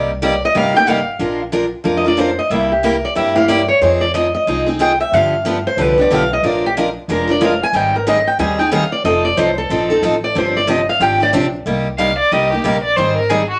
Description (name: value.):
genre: acoustic string swing (jazz manouche).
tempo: 184 BPM.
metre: 4/4.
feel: swing 61% on 8ths.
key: C minor.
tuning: A4 = 440 Hz.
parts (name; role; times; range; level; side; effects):
picked old ladder-braced acoustic guitar; melody; 0.0-11.3 s; G4 to Ab5; -18 LUFS; equal; none.
picked steel-string acoustic guitar; accompaniment; 0.0-13.4 s; C3 to Bb4; -19 LUFS; equal; none.
upright bass; bass; 0.0-13.5 s; F1 to G2; -28 LUFS; equal; none.
warm violin; second line; 12.0-13.6 s; F#4 to F5; -18 LUFS; equal; none.
room: wet studio reverb, RT60 0.6 s.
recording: vinyl crackle.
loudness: -16 LUFS.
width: mono.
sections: 0.0-1.2 A section; 1.2-11.7 A section; 11.7-13.6 A section.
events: steel-string acoustic guitar solo 0.0-11.7; violin solo 11.7-13.6.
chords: 0.0 Cm7; 1.2 Bb7; 2.5 C7; 3.8 Fm7; 5.1 G7; 6.4 Bb7; 7.7 Abmaj7; 9.0 F7; 10.4 G7sus4; 11.7 Cm7; 13.0 Abmaj7.